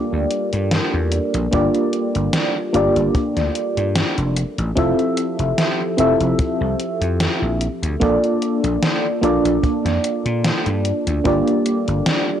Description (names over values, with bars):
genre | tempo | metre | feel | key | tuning
vaporwave | 74 BPM | 4/4 | swing 54% on 16ths | G dorian | A4 = 440 Hz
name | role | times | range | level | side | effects
mellow FM electric piano | accompaniment | 0.0-12.4 s | Bb3 to E5 | -19 LUFS | equal | tremolo, analog chorus, cassette tape, tape echo
warbly tape-like pad | sustained chords | 0.0-12.4 s | F3 to E5 | -28 LUFS | equal | chorus, built-in reverb, vintage 12-bit sampler grit
vintage slap bass | bass | 0.1-12.0 s | F1 to Bb2 | -22 LUFS | equal | none
gated 80s digital drum machine | drums | 0.3-12.2 s | hi-hat, snare drum | -22 LUFS | equal | gated reverb, gated reverb snare, overdrive, vintage 12-bit sampler grit
kick drum | drums | 1.5-11.4 s | none | -22 LUFS | equal | vintage 12-bit sampler grit
room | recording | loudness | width
studio reverb | dry, gritty hardware recording | -17 LUFS | side -9 dB against mid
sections
0.0-12.4 A section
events
none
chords
0.0 Gm7; 4.4 Fmaj7; 7.6 Bbmaj7; 11.3 Gm7